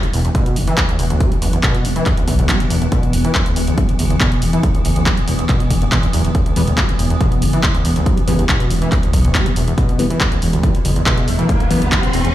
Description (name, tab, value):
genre	driving peak-time techno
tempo	140 BPM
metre	4/4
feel	straight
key	E minor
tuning	A4 = 439 Hz
part	overdriven acid bass	riff	0.0-12.3 s	D2 to G3	-20 LUFS	equal	distortion, lush chorus, sidechain pumping, ping-pong delay
part	swarming drone	drone	0.1-12.3 s	E3 to B3	-24 LUFS	equal	built-in reverb, sidechain pumping
part	punchy analog drum machine	drums	0.0-12.3 s	handclaps, hi-hat	-22 LUFS	equal	overdrive
part	dark detuned saw bass	bass	0.1-12.3 s	D1 to B1	-19 LUFS	equal	sidechain pumping
part	electronic kick drum	drums	0.3-12.0 s	none	-18 LUFS	equal	none
part	wavetable chord stab	stabs	6.6-11.8 s	E3 to B3	-24 LUFS	left 2 dB	cassette tape, sidechain pumping, ping-pong delay
part	riser	sound effects	10.4-12.3 s	none	-23 LUFS	equal	none
room	light reverb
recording	played on a big sound system in a bare room, large studio reverb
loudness	-13 LUFS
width	side -13 dB against mid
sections	0.0-12.3 A section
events	riser 10.4-12.3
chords	0.0 Em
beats	0.35 0.78 | 1.21 1.63 2.06 2.49 | 2.92 3.35 3.78 4.21 | 4.63 5.06 5.49 5.92 | 6.35 6.78 7.21 7.63 | 8.06 8.49 8.92 9.35 | 9.78 10.21 10.63 11.06 | 11.49 11.92